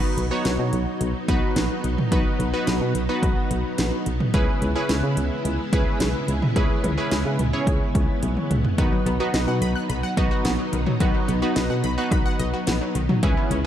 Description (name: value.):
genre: synth-pop.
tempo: 108 BPM.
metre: 4/4.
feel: straight.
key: B major.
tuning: A4 = 440 Hz.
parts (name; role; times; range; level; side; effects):
funky polysynth comp; accompaniment; 0.0-13.6 s; B3 to C#5; -27 LUFS; right 1 dB; chorus.
string machine, full ensemble; sustained chords; 0.0-13.7 s; C#3 to E4; -29 LUFS; equal; ensemble chorus.
solid FM bass; bass; 0.2-13.6 s; A#1 to C#3; -25 LUFS; equal; none.
house drum kit; drums; 0.2-13.6 s; cowbell, hi-hat, kick drum, snare drum, toms; -24 LUFS; equal; overdrive.
wide unison pluck; arpeggios; 8.8-13.6 s; D#3 to F#6; -29 LUFS; left 2 dB; ping-pong delay.
room: light reverb.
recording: dark, warm production.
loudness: -20 LUFS.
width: side -10 dB against mid.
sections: 0.0-13.7 A section.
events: drum fill 8.2-8.8.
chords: 0.0 B; 4.3 C#m7; 8.8 B.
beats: 0.45 1.01 1.56 | 2.12 2.67 3.23 3.78 | 4.34 4.89 5.45 6.01 | 6.56 7.12 7.67 8.23 | 8.78 9.34 9.89 10.45 | 11.01 11.56 12.12 12.67 | 13.23.